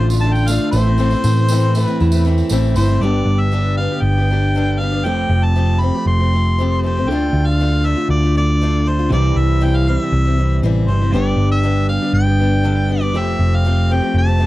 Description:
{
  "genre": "folk rock and heartland rock",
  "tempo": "118 BPM",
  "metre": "4/4",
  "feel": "straight",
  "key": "unclear",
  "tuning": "A4 = 440 Hz",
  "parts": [
    { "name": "mellow harmonica", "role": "melody", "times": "0.0-14.5 s", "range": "C5 to C6", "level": "-23 LUFS", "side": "equal", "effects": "none" },
    { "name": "picked acoustic archtop guitar", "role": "accompaniment", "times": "0.0-14.5 s", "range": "G2 to G4", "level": "-23 LUFS", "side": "left 6 dB", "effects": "none" },
    { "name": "warm baby grand piano", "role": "accompaniment", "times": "0.0-2.7 s", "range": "E4 to D5", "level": "-35 LUFS", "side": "right 7 dB", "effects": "none" },
    { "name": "electric guitar through a small old amp", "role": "riff", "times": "0.0-14.5 s", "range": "G2 to G4", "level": "-21 LUFS", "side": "right 3 dB", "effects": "vibrato effect" },
    { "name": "hollow-body short-scale picked electric bass", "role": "bass", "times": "0.0-14.5 s", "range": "F1 to A2", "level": "-16 LUFS", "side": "equal", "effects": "none" },
    { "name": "tambourine", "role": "percussion", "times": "0.1-3.0 s", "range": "none", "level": "-31 LUFS", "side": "right 5 dB", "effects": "none" }
  ],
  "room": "little or no reverb",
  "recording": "dry, close 1970s-style studio recording",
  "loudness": "-14 LUFS",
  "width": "side -16 dB against mid",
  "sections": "0.0-3.0 A section; 3.0-14.5 B section",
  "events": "none",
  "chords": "0.0 Dm; 0.7 Am; 3.0 G; 5.0 Fadd9; 7.1 Dm; 9.1 C; 11.1 G; 13.2 Fadd9",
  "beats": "0.49 | 0.99 1.50 2.01 2.51 | 3.02 3.53 4.03 4.54 | 5.05 5.56 6.07 6.57 | 7.08 7.59 8.10 8.60 | 9.11 9.62 10.12 10.63 | 11.13 11.64 12.14 12.65 | 13.15 13.65 14.16"
}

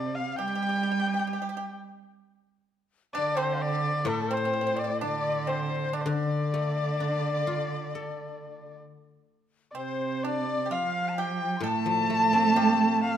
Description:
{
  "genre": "chinese traditional, Chinese chamber ensemble",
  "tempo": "64 BPM",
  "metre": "4/4",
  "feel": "rubato",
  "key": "D yu mode",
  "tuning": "A4 = 445 Hz",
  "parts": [
    { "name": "dark erhu", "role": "melody", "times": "0.0-13.2 s", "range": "A4 to A5", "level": "-30 LUFS", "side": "left 1 dB", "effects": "none" },
    { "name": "dark cello", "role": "second line", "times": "0.0-13.2 s", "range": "A2 to A3", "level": "-30 LUFS", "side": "right 5 dB", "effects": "none" },
    { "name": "pipa", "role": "second line", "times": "0.0-13.2 s", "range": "A3 to A4", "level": "-35 LUFS", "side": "right 3 dB", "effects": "none" },
    { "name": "guzheng", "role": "accompaniment", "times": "0.0-13.2 s", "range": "A2 to A4", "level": "-34 LUFS", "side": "left 4 dB", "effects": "none" },
    { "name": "reedy dizi", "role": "second line", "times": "0.2-13.2 s", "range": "A4 to C6", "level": "-34 LUFS", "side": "left 7 dB", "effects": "none" }
  ],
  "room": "moderate recital hall reverb, RT60 1.4 s",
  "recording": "close, detailed microphones",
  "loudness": "-25 LUFS",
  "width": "side -10 dB against mid",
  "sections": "0.0-9.8 A section; 9.8-13.2 B section",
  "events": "none",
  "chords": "none",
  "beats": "0.39 1.30 | 2.22 3.15 4.08 5.01 | 5.94 6.87 7.81 8.79 | 9.77 10.71 11.65 12.56"
}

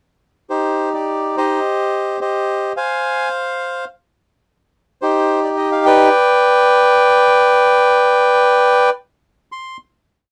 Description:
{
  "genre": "tango",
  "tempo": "107 BPM",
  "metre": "4/4",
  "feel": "rubato",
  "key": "C harmonic minor",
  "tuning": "A4 = 441 Hz",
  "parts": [
    { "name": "bandoneon", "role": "solo", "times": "0.5-9.8 s", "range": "Eb4 to C6", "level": "-15 LUFS", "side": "equal", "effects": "none" }
  ],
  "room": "light reverb",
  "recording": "dry, close 1970s-style studio recording",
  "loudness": "-15 LUFS",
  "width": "mono",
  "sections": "0.5-9.5 A section; 9.5-10.3 final note",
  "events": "none",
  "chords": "0.5 Cm; 2.8 Fm; 5.0 Ebmaj13; 6.1 G/B; 8.9 N.C.",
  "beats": "| 0.49 1.06 1.63 2.19 | 2.75 3.32 3.88 4.44 | 5.00 5.56 6.12 6.67 | 7.23 7.79 8.36 8.93 | 9.49"
}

